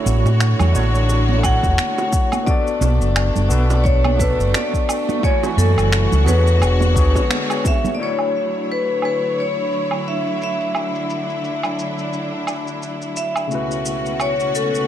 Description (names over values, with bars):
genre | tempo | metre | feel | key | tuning
sunset chillout | 87 BPM | 4/4 | swing 57% on 16ths | unclear | A4 = 443 Hz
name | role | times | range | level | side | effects
overdriven tine electric piano | accompaniment | 0.0-14.9 s | C#3 to G#5 | -26 LUFS | moving between left 6 dB and right 8 dB | fast tremolo, auto-pan, ping-pong delay
rich symphonic string section | sustained chords | 0.0-14.9 s | C#2 to C#5 | -25 LUFS | left 1 dB | none
fingered electric bass | bass | 0.1-7.1 s | E1 to A2 | -16 LUFS | equal | none
deep house drum kit | drums | 0.1-14.9 s | crash cymbal, finger snaps, shaker, woodblock | -25 LUFS | right 2 dB | low-pass filter on perc, small room ambience, low-pass filter on snare, low-pass filter on cymbals
congas and bongos | percussion | 0.1-8.0 s | none | -27 LUFS | right 6 dB | none
vibraphone with medium hard mallets | melody | 1.4-14.9 s | A4 to F#5 | -22 LUFS | left 2 dB | digital delay
electronic kick drum | drums | 1.4-7.8 s | none | -19 LUFS | equal | small room ambience
room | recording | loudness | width
light reverb | dark, warm production | -16 LUFS | side -11 dB against mid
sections
0.0-8.0 A section; 8.0-14.9 B section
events
band accent 7.3-7.6; filter sweep on drum 8.0-14.9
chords
0.0 Dmaj7/A; 2.5 Bm7; 5.2 F#m7; 6.6 E13; 8.0 Dmaj9; 13.5 A69/C#